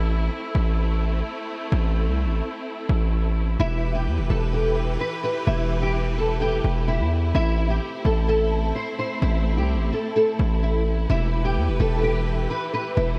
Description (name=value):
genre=hip hop, trap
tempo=128 BPM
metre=4/4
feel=half-time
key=unclear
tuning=A4 = 440 Hz
part: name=warm symphonic string section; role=sustained chords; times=0.0-13.2 s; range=E3 to B4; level=-32 LUFS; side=equal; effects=none
part: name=distorted 808-style bass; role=bass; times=0.0-13.2 s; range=E1 to E2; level=-24 LUFS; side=equal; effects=distortion
part: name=nylon-string guitar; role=melody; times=3.6-13.2 s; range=E4 to C5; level=-28 LUFS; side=equal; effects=ensemble chorus, low-pass filter
room=light reverb, small room ambience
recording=none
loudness=-23 LUFS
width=mono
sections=0.0-13.2 A section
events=break 0.0-3.6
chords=0.0 Am; 3.6 Em; 7.3 Am; 11.1 Em